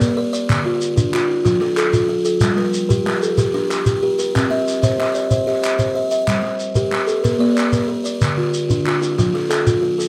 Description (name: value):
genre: southern african traditional, mbira-style interlocking cycle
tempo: 124 BPM (dotted quarters)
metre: 12/8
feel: straight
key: G equiheptatonic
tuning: A4 = 441 Hz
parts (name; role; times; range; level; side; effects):
- buzzing kalimba; arpeggios; 0.0-10.1 s; D3 to E5-43c; -21 LUFS; equal; none
- kalimba; arpeggios; 0.0-10.1 s; D3 to E5-43c; -26 LUFS; equal; none
- group handclap; percussion; 0.0-9.8 s; none; -28 LUFS; equal; none
- shekere; percussion; 0.0-10.1 s; none; -24 LUFS; equal; none
room: light reverb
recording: close, detailed microphones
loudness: -18 LUFS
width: mono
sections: 0.0-10.1 A section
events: none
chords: 0.5 Dm; 1.5 F; 2.4 Gm; 4.3 C; 6.3 Gm; 7.2 Bb; 8.2 Dm; 9.2 F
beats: 0.01 | 0.49 0.97 1.46 1.94 | 2.42 2.90 3.38 3.87 | 4.35 4.83 5.31 5.80 | 6.28 6.76 7.25 7.73 | 8.21 8.70 9.18 9.67